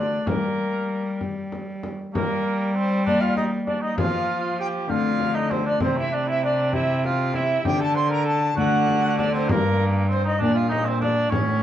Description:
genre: classical, renaissance-style consort dance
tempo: 65 BPM (dotted quarters)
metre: 6/8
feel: straight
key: G minor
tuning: A4 = 440 Hz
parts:
  - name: tenor recorder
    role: melody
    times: 0.0-11.6 s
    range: Bb4 to C6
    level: -25 LUFS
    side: left 1 dB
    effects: none
  - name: mellow cor anglais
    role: second line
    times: 0.0-11.6 s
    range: Bb3 to C5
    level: -28 LUFS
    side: right 4 dB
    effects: none
  - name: Celtic harp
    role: accompaniment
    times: 0.0-11.6 s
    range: G2 to G4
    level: -28 LUFS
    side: left 4 dB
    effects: none
  - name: rich cello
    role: bass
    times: 0.0-11.6 s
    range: G2 to G3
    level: -25 LUFS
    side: right 1 dB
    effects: transformer saturation
  - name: frame drum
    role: percussion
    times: 0.3-11.6 s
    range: none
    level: -30 LUFS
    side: left 1 dB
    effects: none
room: moderate stone room reverb, RT60 1.1 s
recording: worn, warbling old tape, cassette tape, warbly pitch drift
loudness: -20 LUFS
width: side -11 dB against mid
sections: 0.0-2.1 A section; 2.1-11.6 A section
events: none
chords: 0.3 Gm; 4.0 F; 5.8 C5; 7.7 Dsus4; 8.6 D; 9.5 Gm

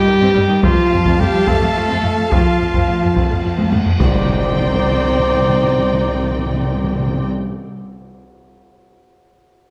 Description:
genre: cinematic, epic orchestral film score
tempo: 71 BPM (dotted quarters)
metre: 6/8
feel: straight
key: C dorian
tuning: A4 = 439 Hz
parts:
  - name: rich symphonic violin section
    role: melody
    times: 0.0-7.3 s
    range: G5 to A5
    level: -31 LUFS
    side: equal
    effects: none
  - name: rich studio violin section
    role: second line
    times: 0.0-7.3 s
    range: Eb4 to F5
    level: -30 LUFS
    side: equal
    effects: none
  - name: mellow French horn section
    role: sustained chords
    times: 0.0-7.3 s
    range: F4 to C5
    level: -22 LUFS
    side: equal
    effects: none
  - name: warm trumpet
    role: stabs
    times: 0.0-7.3 s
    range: F4 to C5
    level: -26 LUFS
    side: equal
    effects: none
  - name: warm symphonic cello section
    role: bass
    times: 0.0-7.3 s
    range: F3 to C4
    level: -24 LUFS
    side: equal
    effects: none
  - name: warm symphonic viola section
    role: accompaniment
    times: 0.1-7.3 s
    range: Eb3 to D5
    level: -28 LUFS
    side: equal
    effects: none
  - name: rich symphonic double bass section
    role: bass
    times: 0.1-7.3 s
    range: C2 to G2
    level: -24 LUFS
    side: equal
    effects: none
  - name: solo taiko drums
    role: drums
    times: 0.6-5.1 s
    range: none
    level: -21 LUFS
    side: equal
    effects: none
  - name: cymbal swell and tam-tam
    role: percussion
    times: 0.6-6.2 s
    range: none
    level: -32 LUFS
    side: equal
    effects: none
  - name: timpani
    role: percussion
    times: 4.0-7.3 s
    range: C3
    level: -24 LUFS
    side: equal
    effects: none
  - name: impact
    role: sound effects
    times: 4.0-5.7 s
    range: none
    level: -30 LUFS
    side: equal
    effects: none
room: wet scoring stage reverb, RT60 1.8 s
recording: none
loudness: -16 LUFS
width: mono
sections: 0.0-4.0 A section; 4.0-7.4 B section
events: drum fill 3.6-4.0; band accent 4.0-4.6; impact 4.0-5.7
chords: 0.0 Cm/G (rootless); 0.6 F; 4.0 Cmadd9

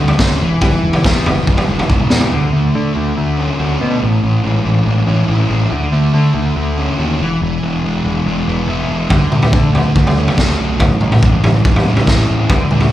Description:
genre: indie rock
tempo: 142 BPM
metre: 4/4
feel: straight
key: D lydian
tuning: A4 = 440 Hz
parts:
  - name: fuzz guitar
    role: riff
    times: 0.0-12.9 s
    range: A2 to F#4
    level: -17 LUFS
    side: equal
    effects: distortion, slapback echo
  - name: growling picked electric bass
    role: bass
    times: 0.0-12.9 s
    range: E1 to D3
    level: -16 LUFS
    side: equal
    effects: overdrive
  - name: raw garage drum kit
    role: drums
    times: 0.1-2.3, 9.1-12.9 s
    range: kick drum, snare drum, toms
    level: -13 LUFS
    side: equal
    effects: none
room: studio reverb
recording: live gig heard through the venue's PA, club reverb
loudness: -12 LUFS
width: side -13 dB against mid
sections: 0.0-2.3 A section; 2.3-12.9 B section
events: drum fill 1.9-2.3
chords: 0.4 E; 2.3 Dmaj7; 4.0 Amaj7; 5.7 Dmaj7; 7.2 E; 9.1 Dmaj7; 10.8 Amaj7

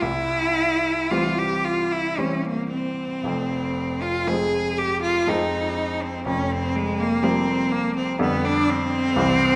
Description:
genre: classical, romantic duo for cello and grand piano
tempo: 54-63 BPM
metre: 3/4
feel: rubato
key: F minor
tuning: A4 = 441 Hz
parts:
  - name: bright cello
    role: melody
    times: 0.0-9.6 s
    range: Ab3 to Ab4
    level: -25 LUFS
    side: equal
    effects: none
  - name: clear baby grand piano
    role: accompaniment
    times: 0.0-9.6 s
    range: F1 to C4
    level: -28 LUFS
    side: equal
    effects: none
room: wet recital hall reverb, RT60 1.6 s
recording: recorded in a church or concert hall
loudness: -23 LUFS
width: mono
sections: 0.0-9.6 A section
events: none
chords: 0.0 C; 3.2 Fm; 6.3 Bbsus2/F; 8.2 G7/F

